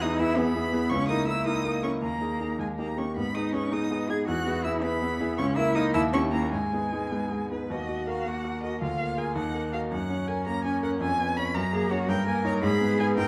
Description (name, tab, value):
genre	quick classical-period movement for piano trio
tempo	109 BPM (dotted quarters)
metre	6/8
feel	rubato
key	G# minor, Eb minor from 7.7 s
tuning	A4 = 440 Hz
part	rich violin	melody	0.0-13.3 s	B4 to G#6	-35 LUFS	equal	none
part	rich cello	second line	0.0-13.3 s	G#3 to A#4	-33 LUFS	equal	none
part	clear grand piano	accompaniment	0.0-13.3 s	C#2 to Db5	-30 LUFS	equal	none
room	wet recital hall reverb, RT60 1.5 s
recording	dark, warm production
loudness	-28 LUFS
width	mono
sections	0.0-7.7 A section; 7.7-13.3 B section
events	none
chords	0.0 E; 0.9 A#dim/C#; 2.0 D#sus4; 2.6 D#; 3.2 G#m; 4.3 E; 5.4 A#dim/C#; 5.9 D#7b9; 6.5 G#m; 7.7 Ebm; 8.8 Bb7/D; 9.4 Ebm; 9.9 Gb; 11.0 Db7/F; 11.6 Gb; 12.1 D#7/G; 12.6 G#m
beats	0.37 | 0.91 1.46 | 2.02 2.60 | 3.17 3.73 | 4.29 4.84 | 5.39 5.94 | 6.53 7.12 | 7.71 8.27 | 8.82 9.37 | 9.92 10.47 | 11.01 11.55 | 12.09 12.64 | 13.18